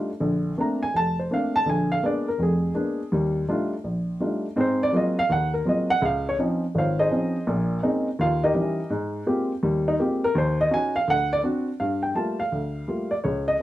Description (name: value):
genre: solo jazz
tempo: 166 BPM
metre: 4/4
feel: swing 64% on 8ths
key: unclear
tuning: A4 = 439 Hz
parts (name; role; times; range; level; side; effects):
- dark upright piano; solo; 0.0-13.6 s; F1 to Bb5; -22 LUFS; equal; none
room: moderate studio reverb, RT60 0.7 s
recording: close, detailed microphones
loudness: -22 LUFS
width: side -14 dB against mid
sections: 0.2-11.8 A section; 11.8-13.6 B section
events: upright piano solo 0.0-11.8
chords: 0.2 Bbmaj9; 1.7 Bb7b9; 3.1 Ebmaj9#11; 4.6 Ab13; 6.0 Dbmaj9; 7.5 Bbm11; 8.2 Eb7b9; 8.9 Abmaj13; 10.3 Ebm7; 11.1 D7; 11.8 Gm9